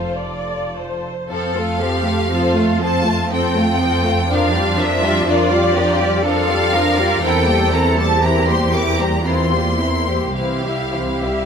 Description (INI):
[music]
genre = classical, slow romantic movement for string orchestra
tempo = 50-62 BPM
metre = 3/4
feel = rubato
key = F major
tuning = A4 = 440 Hz
[part]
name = clear studio violin section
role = melody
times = 0.0-11.5 s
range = D5 to D6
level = -21 LUFS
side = equal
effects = none
[part]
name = rich symphonic violin section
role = second line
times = 0.0-11.5 s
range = E4 to E5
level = -23 LUFS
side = left 4 dB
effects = none
[part]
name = rich studio viola section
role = accompaniment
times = 0.0-11.5 s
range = E3 to D5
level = -20 LUFS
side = equal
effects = none
[part]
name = rich studio cello section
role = bass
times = 0.0-11.5 s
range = F2 to Bb4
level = -24 LUFS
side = right 2 dB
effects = none
[part]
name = rich studio double bass section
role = bass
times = 0.0-11.5 s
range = F1 to F2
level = -22 LUFS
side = right 2 dB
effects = none
[sound]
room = moderate recital hall reverb, RT60 1.8 s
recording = close, detailed microphones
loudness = -15 LUFS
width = side -7 dB against mid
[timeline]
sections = 0.0-1.3 A section; 1.3-11.5 A section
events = none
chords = 0.0 F; 4.3 Gm7/F; 7.2 C7/E; 10.4 C